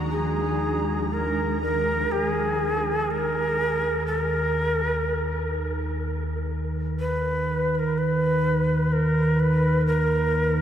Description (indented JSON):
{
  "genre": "dark ambient drone",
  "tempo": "61 BPM",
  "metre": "4/4",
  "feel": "straight",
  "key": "unclear",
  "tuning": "A4 = 440 Hz",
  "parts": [
    { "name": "granular cloud pad", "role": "sustained chords", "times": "0.0-2.1, 9.9-10.6 s", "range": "Eb3 to D4", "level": "-33 LUFS", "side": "right 1 dB", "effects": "built-in reverb" },
    { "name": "analog drone", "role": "drone", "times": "0.0-10.6 s", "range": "Eb2 to Eb3", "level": "-25 LUFS", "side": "right 1 dB", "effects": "chorus" },
    { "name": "bubbling stepped-filter texture", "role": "texture", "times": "0.0-2.1 s", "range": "Bb5", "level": "-39 LUFS", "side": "right 2 dB", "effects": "chorus, built-in reverb" },
    { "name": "breathy mellow shakuhachi", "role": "melody", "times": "0.1-10.6 s", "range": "Ab4 to Cb5", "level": "-25 LUFS", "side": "equal", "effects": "tape echo" }
  ],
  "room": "wet huge ambient reverb, RT60 9.1 s",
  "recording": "none",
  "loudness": "-22 LUFS",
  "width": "side -10 dB against mid",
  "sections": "0.0-2.1 A section; 2.1-10.6 B section",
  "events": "none",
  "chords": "0.0 Eb5"
}